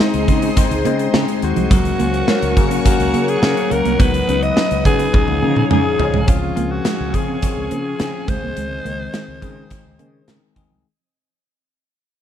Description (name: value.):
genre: 1980s-style pop.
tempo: 105 BPM.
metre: 4/4.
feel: straight.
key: Db major.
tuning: A4 = 443 Hz.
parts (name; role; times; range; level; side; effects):
breathy alto saxophone; melody; 0.0-10.3 s; Eb4 to Eb5; -22 LUFS; right 1 dB; tape echo.
bell-like tine electric piano; accompaniment; 0.0-10.9 s; Eb3 to C5; -21 LUFS; left 10 dB; phaser.
string machine, full ensemble; sustained chords; 0.0-10.8 s; C4 to Eb6; -26 LUFS; right 1 dB; ensemble chorus.
clean electric guitar; riff; 0.0-10.8 s; F3 to Db4; -24 LUFS; right 8 dB; lush chorus.
gated 80s drum kit; drums; 0.0-10.7 s; hi-hat, kick drum, snare drum, tambourine, toms; -18 LUFS; right 1 dB; none.
fretless electric bass; bass; 0.1-10.8 s; C2 to Db3; -23 LUFS; right 1 dB; wide subtle chorus.
room: little or no reverb.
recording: none.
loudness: -15 LUFS.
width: side -10 dB against mid.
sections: 0.0-6.3 A section; 6.3-10.9 B section.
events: drum fill 5.1-6.3; fade-out 6.3-10.9.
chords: 0.0 Ab; 1.7 Gb/Db; 4.0 Cb/Db; 5.1 Dbadd9; 6.3 Dbmaj7; 8.3 Ab.